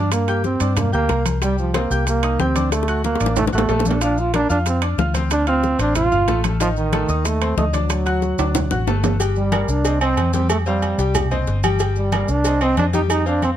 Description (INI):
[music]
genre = latin, salsa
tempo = 185 BPM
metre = 4/4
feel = straight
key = G minor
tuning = A4 = 439 Hz
[part]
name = warm trombone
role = melody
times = 0.0-13.5 s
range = Eb3 to F4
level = -21 LUFS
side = right 3 dB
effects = none
[part]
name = bright concert grand piano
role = accompaniment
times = 0.0-13.5 s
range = Eb3 to G6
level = -25 LUFS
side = left 4 dB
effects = none
[part]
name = vintage muted fingered electric bass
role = bass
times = 0.0-13.5 s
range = G1 to G2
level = -21 LUFS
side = equal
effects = none
[part]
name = bongos and cowbell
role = percussion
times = 0.1-13.6 s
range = none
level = -27 LUFS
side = left 7 dB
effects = none
[part]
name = congas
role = percussion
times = 0.1-13.6 s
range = none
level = -27 LUFS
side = left 3 dB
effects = none
[part]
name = maracas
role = percussion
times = 0.1-13.6 s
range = none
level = -34 LUFS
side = right 5 dB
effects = none
[part]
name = timbales and agogo bells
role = percussion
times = 0.1-13.6 s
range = none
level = -26 LUFS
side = right 8 dB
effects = none
[sound]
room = light reverb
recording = close, detailed microphones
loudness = -16 LUFS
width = side -11 dB against mid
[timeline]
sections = 0.0-9.2 A section; 9.2-13.6 B section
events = drum fill 2.7-4.0, 8.2-9.2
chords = 0.1 Gm; 1.4 Cm; 2.7 D; 4.0 Bb; 5.3 Dm7; 6.6 Adim; 7.9 D; 9.2 Gm; 9.8 Cm; 10.5 Fsus2; 11.1 Cm; 11.8 Gm; 12.4 Cm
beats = | 0.12 0.45 0.77 1.10 | 1.42 1.75 2.07 2.40 | 2.72 3.04 3.37 3.69 | 4.01 4.34 4.66 4.99 | 5.31 5.63 5.96 6.28 | 6.60 6.93 7.25 7.58 | 7.90 8.22 8.55 8.87 | 9.20 9.52 9.85 10.17 | 10.50 10.82 11.15 11.47 | 11.80 12.12 12.45 12.77 | 13.10 13.42